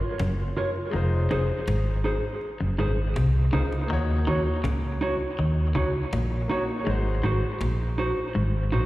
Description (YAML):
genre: lovers rock reggae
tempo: 81 BPM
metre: 4/4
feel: straight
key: Eb dorian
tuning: A4 = 440 Hz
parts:
  - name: clear baby grand piano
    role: accompaniment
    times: 0.0-8.9 s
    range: Ab3 to Db5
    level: -34 LUFS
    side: left 2 dB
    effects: slapback echo
  - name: cajon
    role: drums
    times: 0.0-8.8 s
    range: none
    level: -39 LUFS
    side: equal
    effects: slapback echo
  - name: twangy electric guitar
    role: riff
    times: 0.2-8.8 s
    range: F2 to Eb3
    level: -32 LUFS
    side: left 2 dB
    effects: tremolo, dub echo, slapback echo
  - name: vintage muted fingered electric bass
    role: bass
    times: 0.2-8.9 s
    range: F1 to Eb2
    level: -25 LUFS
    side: equal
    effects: none
  - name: mellow electric guitar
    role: stabs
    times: 0.6-8.9 s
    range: Eb4 to Db5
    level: -29 LUFS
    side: right 2 dB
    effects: dub echo, slapback echo
room: light reverb, small room ambience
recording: live gig heard through the venue's PA, recital hall reverb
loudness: -23 LUFS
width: side -17 dB against mid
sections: 0.0-8.9 A section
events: none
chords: 0.0 Gbmaj7; 0.9 Fm7; 3.9 Ebm7; 6.9 Ab7